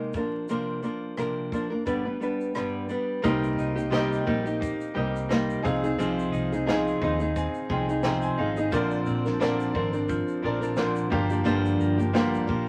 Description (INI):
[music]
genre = acoustic pop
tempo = 88 BPM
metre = 4/4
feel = swing 55% on 16ths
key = C minor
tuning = A4 = 440 Hz
[part]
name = nylon-string guitar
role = accompaniment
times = 0.0-12.7 s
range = G2 to B4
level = -29 LUFS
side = equal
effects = none
[part]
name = compact cocktail drum kit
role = drums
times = 0.1-12.7 s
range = kick drum, rim click, shaker, snare drum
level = -37 LUFS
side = equal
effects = none
[part]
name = clear upright piano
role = accompaniment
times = 3.2-12.7 s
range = Bb3 to C6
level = -35 LUFS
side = equal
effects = none
[part]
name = direct-recorded clean electric guitar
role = arpeggios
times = 3.2-12.7 s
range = F3 to Ab4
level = -35 LUFS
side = equal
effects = none
[part]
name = vintage muted fingered electric bass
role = bass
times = 3.2-12.7 s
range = G1 to Eb2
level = -34 LUFS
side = equal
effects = none
[sound]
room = moderate studio reverb, RT60 0.6 s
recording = vinyl crackle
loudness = -27 LUFS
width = mono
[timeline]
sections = 0.0-3.2 A section; 3.2-12.7 B section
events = upright piano fill 6.7-8.7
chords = 0.1 Bbadd9/C; 1.9 G; 3.2 Cm7; 5.6 Fm7/C; 8.7 Bbadd9; 11.1 Gm7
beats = | 0.49 1.18 1.87 2.55 | 3.24 3.93 4.61 5.30 | 5.98 6.67 7.35 8.04 | 8.72 9.41 10.09 10.78 | 11.46 12.14